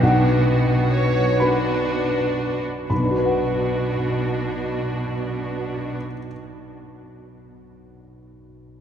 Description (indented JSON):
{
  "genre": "cinematic",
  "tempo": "38-48 BPM (dotted quarters)",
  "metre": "6/8",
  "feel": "rubato",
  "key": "B minor",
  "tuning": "A4 = 442 Hz",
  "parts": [
    { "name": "felt-muted upright piano", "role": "accompaniment", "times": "0.0-8.8 s", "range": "B1 to B5", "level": "-24 LUFS", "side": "equal", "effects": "none" },
    { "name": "rich studio viola section", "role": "accompaniment", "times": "0.0-6.0 s", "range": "B3 to C#5", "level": "-28 LUFS", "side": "right 2 dB", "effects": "none" },
    { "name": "concert harp", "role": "arpeggios", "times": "0.0-6.8 s", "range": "B2 to F#5", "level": "-25 LUFS", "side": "left 2 dB", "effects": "none" },
    { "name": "rich studio cello section", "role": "bass", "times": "0.0-6.0 s", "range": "B2", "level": "-25 LUFS", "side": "right 1 dB", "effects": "none" }
  ],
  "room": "wet cathedral reverb, RT60 5.0 s",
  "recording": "recorded in a church or concert hall",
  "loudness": "-19 LUFS",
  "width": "side -9 dB against mid",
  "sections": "0.0-2.9 A section; 2.9-5.9 B section",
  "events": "slowing down 0.0-2.9",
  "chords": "0.0 Bm"
}